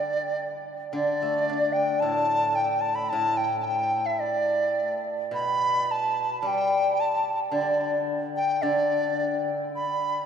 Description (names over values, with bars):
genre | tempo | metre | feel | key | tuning
chinese traditional, Chinese chamber ensemble | 108 BPM | 2/4 | rubato | unclear | A4 = 440 Hz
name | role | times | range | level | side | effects
large dizi | melody | 0.0-10.3 s | D5 to B5 | -24 LUFS | right 1 dB | none
steel-string zither | accompaniment | 0.0-10.3 s | A2 to D4 | -29 LUFS | left 2 dB | none
room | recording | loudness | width
wet cathedral reverb, RT60 6.0 s | recorded in a church or concert hall | -23 LUFS | side -7 dB against mid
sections
0.9-9.8 A section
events
none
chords
none